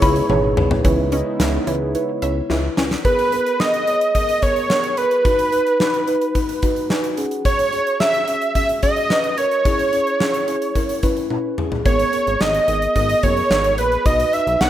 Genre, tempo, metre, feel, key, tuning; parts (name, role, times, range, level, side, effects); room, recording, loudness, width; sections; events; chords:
synth-pop; 109 BPM; 4/4; straight; C# dorian; A4 = 440 Hz
wide unison lead; melody; 0.0-14.7 s; B4 to F#5; -18 LUFS; right 1 dB; digital delay
muted felt-like synth keys; accompaniment; 0.0-14.7 s; B3 to A#5; -23 LUFS; equal; chorus
brassy analog pad; sustained chords; 0.0-3.0 s; C#3 to E4; -26 LUFS; left 1 dB; chorus
wide unison pluck; arpeggios; 0.0-2.9 s; E3 to E5; -28 LUFS; left 1 dB
chorused synth bass; bass; 0.0-3.0, 11.9-14.7 s; F#1 to C#2; -23 LUFS; left 1 dB
gated 80s drum kit; drums; 0.0-14.7 s; hi-hat, kick drum, snare drum, toms; -22 LUFS; equal
moderate plate reverb, RT60 2.0 s, studio reverb; rough home demo mix; -16 LUFS; side -12 dB against mid
0.8-3.0 A section; 3.0-14.7 B section
drum fill 0.3-0.8, 2.5-3.0, 11.3-11.9; synth keys fill 6.4-7.5
0.0 C#m7; 3.0 G#madd9; 5.2 B; 7.2 F#sus2; 9.7 C#m; 11.9 G#madd9; 14.1 B